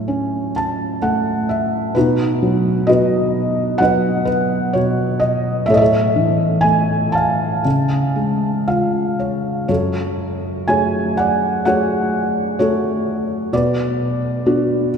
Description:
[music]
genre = classical, lyrical solo piano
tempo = 58-66 BPM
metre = 4/4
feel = rubato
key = F# minor from 9.7 s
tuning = A4 = 439 Hz
[part]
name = felt-muted upright piano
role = solo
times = 0.0-15.0 s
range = F#2 to A5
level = -15 LUFS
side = equal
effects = none
[sound]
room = wet cathedral reverb, RT60 5.3 s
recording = recorded in a church or concert hall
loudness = -15 LUFS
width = side -6 dB against mid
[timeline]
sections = 0.0-9.7 A section; 9.7-15.0 B section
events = felt piano fill 0.1-2.0, 8.2-9.7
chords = 0.0 F#m/A; 2.0 B; 5.7 A; 7.7 C#; 9.7 F#madd9; 13.5 Bm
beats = 0.07 1.02 | 1.96 2.89 3.82 4.76 | 5.69 6.65 7.65 8.69 | 9.69 10.68 11.65 12.60 | 13.53 14.46

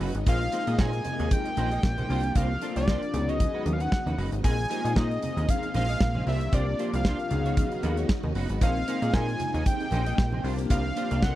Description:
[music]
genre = early-eighties boogie funk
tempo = 115 BPM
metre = 4/4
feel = swing 56% on 16ths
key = unclear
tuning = A4 = 440 Hz
[part]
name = string machine, violins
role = sustained chords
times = 0.0-11.4 s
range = C3 to Eb4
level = -36 LUFS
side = equal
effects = ensemble chorus
[part]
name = semi-hollow electric guitar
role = riff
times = 0.0-11.4 s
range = Ab3 to Eb5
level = -36 LUFS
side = right 5 dB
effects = tube saturation, ensemble chorus
[part]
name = plucky analog bass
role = bass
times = 0.0-11.3 s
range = Gb1 to Bb2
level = -28 LUFS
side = equal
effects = none
[part]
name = damped 70s drum kit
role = drums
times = 0.0-11.4 s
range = hi-hat, kick drum, snare drum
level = -26 LUFS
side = equal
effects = none
[part]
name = fat analog lead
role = melody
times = 0.3-11.4 s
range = D5 to Ab5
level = -32 LUFS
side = equal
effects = chorus
[part]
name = chorused polysynth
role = accompaniment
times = 0.3-11.4 s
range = Bb3 to Bb4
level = -33 LUFS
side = left 3 dB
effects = none
[part]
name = congas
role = percussion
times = 0.3-11.4 s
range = none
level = -38 LUFS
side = right 3 dB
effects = none
[sound]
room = little or no reverb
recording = dry, close 1970s-style studio recording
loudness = -24 LUFS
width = side -14 dB against mid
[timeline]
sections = 0.0-11.4 A section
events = none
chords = 0.3 Bb9sus4; 2.1 C9sus4; 3.1 Db9sus4; 4.4 Bb9sus4; 6.3 C9sus4; 7.3 Db9sus4; 8.6 Bb9sus4; 10.4 C9sus4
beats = | 0.27 0.79 1.31 1.83 | 2.36 2.88 3.40 3.92 | 4.44 4.96 5.49 6.01 | 6.53 7.05 7.57 8.10 | 8.62 9.14 9.66 10.18 | 10.70 11.22

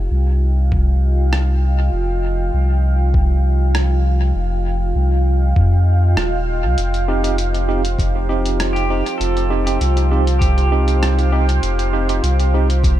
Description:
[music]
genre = ambient dub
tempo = 99 BPM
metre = 4/4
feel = straight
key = unclear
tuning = A4 = 444 Hz
[part]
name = deep dark ambient pad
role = sustained chords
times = 0.0-13.0 s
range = F4 to G5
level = -24 LUFS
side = right 1 dB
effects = chorus, built-in reverb
[part]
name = warm sub bass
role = bass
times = 0.0-13.0 s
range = Eb1 to F2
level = -16 LUFS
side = equal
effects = none
[part]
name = electronic kick drum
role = drums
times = 0.7-13.0 s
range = none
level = -19 LUFS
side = equal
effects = none
[part]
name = lo-fi sampler-style drum kit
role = drums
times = 1.3-13.0 s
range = hi-hat, rim click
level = -28 LUFS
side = equal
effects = dub echo
[part]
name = tine electric piano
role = stabs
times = 7.1-12.7 s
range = C4 to G4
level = -22 LUFS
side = right 4 dB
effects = overdrive, fast stereo tremolo, dub echo
[part]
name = pedal steel guitar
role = arpeggios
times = 8.7-13.0 s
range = G4 to A4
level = -27 LUFS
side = right 1 dB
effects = dub echo
[sound]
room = little or no reverb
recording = none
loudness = -14 LUFS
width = side -13 dB against mid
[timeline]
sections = 0.0-13.0 A section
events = none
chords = 0.0 Fsus2; 6.8 Eb6/F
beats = 0.11 0.72 1.32 | 1.93 2.54 3.14 3.75 | 4.36 4.96 5.57 6.17 | 6.78 7.39 7.99 8.60 | 9.20 9.81 10.42 11.02 | 11.63 12.23 12.84

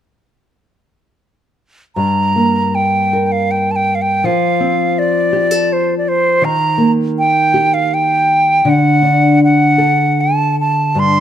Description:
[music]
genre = celtic folk, Celtic slow air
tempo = 80 BPM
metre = 3/4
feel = uneven beats, rubato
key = G minor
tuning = A4 = 440 Hz
[part]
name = bright wooden flute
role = melody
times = 2.0-11.2 s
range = C5 to C6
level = -14 LUFS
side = right 2 dB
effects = none
[part]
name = nylon-string guitar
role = accompaniment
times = 2.0-11.2 s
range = G2 to Bb4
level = -15 LUFS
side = left 1 dB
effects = none
[sound]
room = light reverb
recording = close, detailed microphones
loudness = -11 LUFS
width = side -10 dB against mid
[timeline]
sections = 1.9-11.2 A section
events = none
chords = 1.9 Gm; 4.2 F; 6.4 Eb; 8.7 D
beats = | 1.95 2.72 3.49 | 4.23 4.97 5.70 | 6.42 7.16 7.91 | 8.65 9.40 10.17 | 10.96

